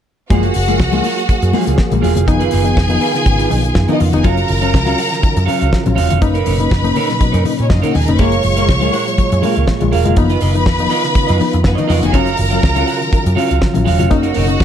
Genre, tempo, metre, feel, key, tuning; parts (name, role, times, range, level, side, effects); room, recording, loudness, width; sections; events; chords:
disco; 122 BPM; 4/4; straight; F# major; A4 = 435 Hz
bright studio string section; second line; 0.3-14.6 s; B3 to C#6; -20 LUFS; equal
reed electric piano; accompaniment; 0.3-14.6 s; B2 to E#4; -20 LUFS; left 7 dB; overdrive
semi-hollow electric guitar; accompaniment; 0.3-14.6 s; A#3 to F#5; -21 LUFS; right 10 dB; spring reverb
tonewheel organ; sustained chords; 0.3-14.6 s; A#2 to G#4; -22 LUFS; right 2 dB; chorus vibrato, slow rotary speaker
vintage muted picked electric bass; bass; 0.3-14.6 s; E1 to A#2; -16 LUFS; equal
damped 70s drum kit; drums; 0.3-14.6 s; hi-hat, kick drum, snare drum; -18 LUFS; equal
congas; percussion; 0.3-14.5 s; -25 LUFS; left 6 dB
light reverb, small room reverb; dark, warm production; -12 LUFS; side -9 dB against mid
0.3-14.6 A section
0.3 F#maj9; 2.3 C#9; 4.2 D#m9/F#; 6.2 Bmaj9/F#; 8.2 F#maj9; 10.2 C#9; 12.1 D#m9/F#; 14.1 Bmaj9/F#